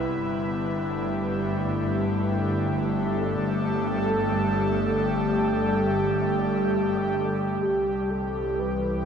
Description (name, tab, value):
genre	ambient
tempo	free time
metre	none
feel	none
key	unclear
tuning	A4 = 440 Hz
part	airy breathy pad	sustained chords	0.0-9.1 s	C3 to B4	-24 LUFS	equal	chorus
part	dark studio double bass section	bass	0.0-9.1 s	G1 to C2	-32 LUFS	equal	tube saturation
part	warm velvety synth lead	melody	7.6-9.1 s	G4 to B4	-28 LUFS	left 1 dB	chorus
room	wet huge ambient reverb, RT60 8.9 s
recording	nothing above 10.8 kHz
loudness	-23 LUFS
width	side -7 dB against mid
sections	0.0-7.6 A section; 7.6-9.1 B section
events	none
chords	0.1 Gsus2; 7.6 Am7/C